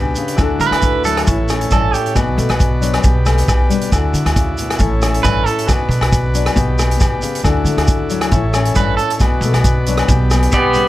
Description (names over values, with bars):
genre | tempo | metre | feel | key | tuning
highlife guitar band | 136 BPM | 4/4 | straight | D major | A4 = 442 Hz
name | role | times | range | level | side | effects
nylon-string guitar | accompaniment | 0.0-10.9 s | G2 to E4 | -21 LUFS | left 5 dB | none
combo organ | sustained chords | 0.0-10.9 s | D4 to D5 | -23 LUFS | right 1 dB | plate reverb
upright bass | bass | 0.0-10.7 s | A1 to D3 | -18 LUFS | equal | none
vintage drum kit | drums | 0.2-10.9 s | hi-hat, kick drum, rim click | -19 LUFS | equal | none
shekere | percussion | 0.2-10.9 s | none | -21 LUFS | right 1 dB | none
agogo bells | percussion | 0.4-10.7 s | none | -24 LUFS | left 4 dB | none
electric guitar at the edge of break-up | arpeggios | 0.6-2.2, 5.2-5.7, 8.8-9.1 s | G4 to B4 | -20 LUFS | right 6 dB | plate reverb, analog delay
electric guitar at the edge of break-up | melody | 10.5-10.9 s | G4 to D5 | -14 LUFS | left 2 dB | spring reverb
bright trombone | second line | 10.6-10.9 s | B3 | -16 LUFS | right 3 dB | plate reverb
room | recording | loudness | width
light reverb | none | -13 LUFS | side -15 dB against mid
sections
0.0-10.9 A section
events
clean electric guitar solo 0.0-10.9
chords
0.4 Dadd9; 1.3 A; 2.2 Bm; 3.0 G/B; 3.9 Dadd9; 4.8 A; 5.7 Bm; 6.6 G/B; 7.4 Dadd9; 8.3 A; 9.2 Bm; 10.1 G/B